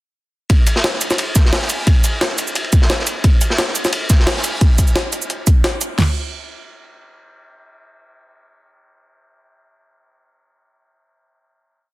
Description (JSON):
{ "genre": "drum and bass", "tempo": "175 BPM", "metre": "4/4", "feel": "swing 54% on 16ths", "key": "none", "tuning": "none", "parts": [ { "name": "crunchy breakbeat drum kit", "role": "drums", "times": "0.5-4.5 s", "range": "hi-hat, ride cymbal, snare drum", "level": "-22 LUFS", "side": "equal", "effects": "high-pass filter on cymbals, high-pass filter on hats, high-pass filter on snare, high-pass filter on room" }, { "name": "jungle sampler-style drum kit", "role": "drums", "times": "0.5-5.9 s", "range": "cabasa, hi-hat, snare drum", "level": "-20 LUFS", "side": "equal", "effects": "none" }, { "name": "pop drum kit", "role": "drums", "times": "0.5-6.1 s", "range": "crash cymbal, kick drum, snare drum, toms", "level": "-13 LUFS", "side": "equal", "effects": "none" } ], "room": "small room reverb", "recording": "dense, heavily limited modern master", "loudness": "-14 LUFS", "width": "side -19 dB against mid", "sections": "0.5-6.0 drop; 6.0-8.7 final hit", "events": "drop 0.5-6.0", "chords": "none" }